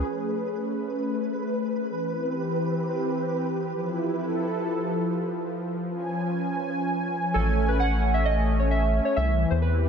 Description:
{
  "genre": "IDM",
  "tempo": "132 BPM",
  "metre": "4/4",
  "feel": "straight",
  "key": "unclear",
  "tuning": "A4 = 439 Hz",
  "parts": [
    { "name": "warm analog pad", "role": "sustained chords", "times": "0.0-9.9 s", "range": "E3 to G#5", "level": "-26 LUFS", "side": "equal", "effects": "chorus" },
    { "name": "rubbery square bass", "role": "bass", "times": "0.0, 7.4-9.9 s", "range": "A1 to E2", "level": "-24 LUFS", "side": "equal", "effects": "none" },
    { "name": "flickering grainy texture", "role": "texture", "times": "0.0-7.4 s", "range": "B4", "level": "-34 LUFS", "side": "right 2 dB", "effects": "built-in reverb" },
    { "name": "warbly lo-fi synth keys", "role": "melody", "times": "7.3-9.9 s", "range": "A4 to F#5", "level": "-26 LUFS", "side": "right 2 dB", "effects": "chorus, dub echo" }
  ],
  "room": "moderate lush hall reverb, RT60 2.4 s",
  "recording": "dark, warm production",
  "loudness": "-24 LUFS",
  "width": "side -7 dB against mid",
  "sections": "0.1-7.4 A section; 7.4-9.9 B section",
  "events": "none",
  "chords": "0.1 Amaj9; 1.9 Cmaj7; 3.7 Fmaj9; 5.5 C#7; 7.4 Amaj7; 9.2 Cmaj7"
}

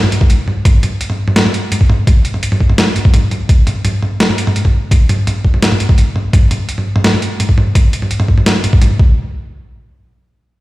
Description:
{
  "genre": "drum and bass",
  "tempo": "169 BPM",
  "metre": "4/4",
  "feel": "half-time",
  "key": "none",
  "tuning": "none",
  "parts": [
    { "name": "boom bap sampler-style drum kit", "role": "drums", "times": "0.0-8.9 s", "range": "hi-hat, snare drum, toms", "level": "-14 LUFS", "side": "equal", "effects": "overdrive" },
    { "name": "electronic kick drum", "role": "drums", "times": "0.2-9.1 s", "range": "none", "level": "-10 LUFS", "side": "equal", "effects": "overdrive" }
  ],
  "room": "moderate echo chamber reverb, RT60 1.7 s",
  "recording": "played on a big sound system in a bare room, stone room reverb",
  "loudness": "-10 LUFS",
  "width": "side -18 dB against mid",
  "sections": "0.0-9.2 A section; 9.2-10.6 B section",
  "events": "none",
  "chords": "none"
}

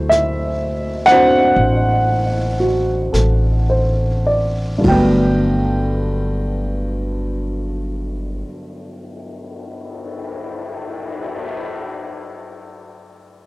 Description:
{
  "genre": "jazz ballad",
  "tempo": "33-43 BPM",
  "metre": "4/4",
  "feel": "swing 67% on 8ths",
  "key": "G major",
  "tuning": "A4 = 440 Hz",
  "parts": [
    { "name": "warm upright piano", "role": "accompaniment", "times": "0.0-13.5 s", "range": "G2 to G5", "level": "-16 LUFS", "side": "equal", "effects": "cassette tape" },
    { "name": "upright bass", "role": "bass", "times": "0.0-8.4 s", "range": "G1 to D2", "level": "-20 LUFS", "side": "equal", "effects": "none" },
    { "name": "jazz brush drum kit", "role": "drums", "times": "0.1-11.6 s", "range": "brushed snare drum, cymbal swell, hi-hat, kick drum, ride cymbal, snare drum", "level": "-30 LUFS", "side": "left 2 dB", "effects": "cassette tape" }
  ],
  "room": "little or no reverb",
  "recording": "home recording on cassette",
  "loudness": "-15 LUFS",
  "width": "side -22 dB against mid",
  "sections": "0.0-4.8 A section; 4.8-12.0 B section",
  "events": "slowing down 0.0-4.8",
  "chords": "0.0 D7; 4.8 Gmaj9"
}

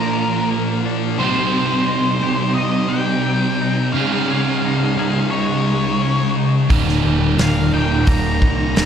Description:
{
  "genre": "rock, shoegaze and dream pop",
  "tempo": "87 BPM",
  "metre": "4/4",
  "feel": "straight",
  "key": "Eb major",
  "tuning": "A4 = 439 Hz",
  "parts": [
    { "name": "octave-fuzz lead guitar", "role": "melody", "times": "0.0-8.9 s", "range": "Bb4 to Bb5", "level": "-24 LUFS", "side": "equal", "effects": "distortion, digital delay" },
    { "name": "twelve-string electric guitar", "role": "arpeggios", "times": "0.0-8.9 s", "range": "Eb2 to Ab4", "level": "-27 LUFS", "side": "left 3 dB", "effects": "wide subtle chorus, digital delay" },
    { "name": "crunchy overdriven guitar", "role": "riff", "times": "0.0-8.9 s", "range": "Eb2 to Ab4", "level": "-20 LUFS", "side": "right 7 dB", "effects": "reverse reverb" },
    { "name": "thick fuzz guitar", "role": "riff", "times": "0.0-8.9 s", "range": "Eb2 to Db4", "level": "-20 LUFS", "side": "left 6 dB", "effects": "distortion, analog chorus" },
    { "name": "growling picked electric bass", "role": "bass", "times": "6.7-8.9 s", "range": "Eb1 to C2", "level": "-20 LUFS", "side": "equal", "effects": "overdrive" },
    { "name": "loose indie drum kit", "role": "drums", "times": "6.7-8.9 s", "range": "hi-hat, kick drum, snare drum", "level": "-18 LUFS", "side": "equal", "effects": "none" }
  ],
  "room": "wet concert hall reverb, RT60 2.1 s",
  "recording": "none",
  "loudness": "-15 LUFS",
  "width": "side -8 dB against mid",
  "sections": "0.0-8.9 A section",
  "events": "none",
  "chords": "0.0 Bb; 1.2 Cm; 4.0 Dbadd9; 6.7 Eb"
}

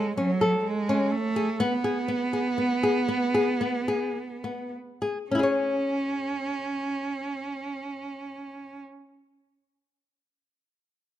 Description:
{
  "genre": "contemporary instrumental, contemporary",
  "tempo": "101-126 BPM",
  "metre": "7/4",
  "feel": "straight",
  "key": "unclear",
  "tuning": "A4 = 439 Hz",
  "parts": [
    { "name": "rich cello", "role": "melody", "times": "0.0-8.8 s", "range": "F#3 to C#4", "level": "-28 LUFS", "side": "right 3 dB", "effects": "none" },
    { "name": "flamenco guitar", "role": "arpeggios", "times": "0.0-8.9 s", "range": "B3 to C#5", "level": "-27 LUFS", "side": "left 3 dB", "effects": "none" }
  ],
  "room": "light reverb",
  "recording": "close, detailed microphones",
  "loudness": "-24 LUFS",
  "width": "side -12 dB against mid",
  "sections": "0.0-5.3 A section; 5.3-9.4 B section",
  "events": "slowing down 1.1-5.3",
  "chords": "0.0 F#madd9; 1.6 G#m; 5.3 C#5"
}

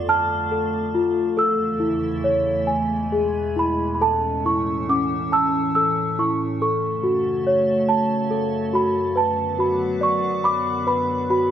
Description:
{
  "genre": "children's music, lullaby",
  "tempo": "46 BPM (dotted quarters)",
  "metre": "6/8",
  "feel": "rubato",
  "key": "A major",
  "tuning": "A4 = 440 Hz",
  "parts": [
    { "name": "celesta", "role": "melody", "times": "0.0-11.5 s", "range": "C#4 to F6", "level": "-20 LUFS", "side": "equal", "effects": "none" },
    { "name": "icy glass pad", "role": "sustained chords", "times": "0.0-11.5 s", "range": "E2 to C#4", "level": "-26 LUFS", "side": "equal", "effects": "chorus, built-in reverb" }
  ],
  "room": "moderate scoring stage reverb, RT60 1.9 s",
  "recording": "none",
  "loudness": "-19 LUFS",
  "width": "side -10 dB against mid",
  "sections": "0.0-4.0 A section; 4.0-11.5 B section",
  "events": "none",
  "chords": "0.0 Dm/F; 1.4 A/E; 2.7 E; 4.0 A; 6.6 F#m; 9.2 Bm/F#"
}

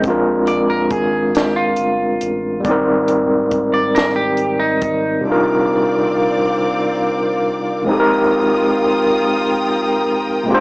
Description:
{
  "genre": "slow six-eight R&B",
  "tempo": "46 BPM (dotted quarters)",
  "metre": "6/8",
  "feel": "straight",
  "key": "C minor",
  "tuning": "A4 = 443 Hz",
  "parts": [
    { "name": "overdriven tine electric piano", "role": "accompaniment", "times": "0.0-10.6 s", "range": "F2 to D5", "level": "-15 LUFS", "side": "equal", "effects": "medium tremolo" },
    { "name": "smooth synth bass", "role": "bass", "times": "0.0-5.2 s", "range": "G1 to Bb1", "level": "-31 LUFS", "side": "equal", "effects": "none" },
    { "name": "compact cocktail drum kit", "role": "drums", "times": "0.0-5.0 s", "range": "hi-hat, kick drum, snare drum", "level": "-20 LUFS", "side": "equal", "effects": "none" },
    { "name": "electric guitar at the edge of break-up", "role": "second line", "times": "0.5-5.2 s", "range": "Eb4 to D5", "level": "-20 LUFS", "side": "right 1 dB", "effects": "spring reverb" },
    { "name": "rich studio string section", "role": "sustained chords", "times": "5.3-10.6 s", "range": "Bb3 to Eb6", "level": "-20 LUFS", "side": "equal", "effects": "none" }
  ],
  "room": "light reverb",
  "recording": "dry, gritty hardware recording, small speaker sound",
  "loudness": "-14 LUFS",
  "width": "side -27 dB against mid",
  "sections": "0.0-5.3 A section; 5.3-10.6 B section",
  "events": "none",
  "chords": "0.0 Bb7; 2.7 Abmaj9#11; 5.3 Cm11; 7.9 Fm11"
}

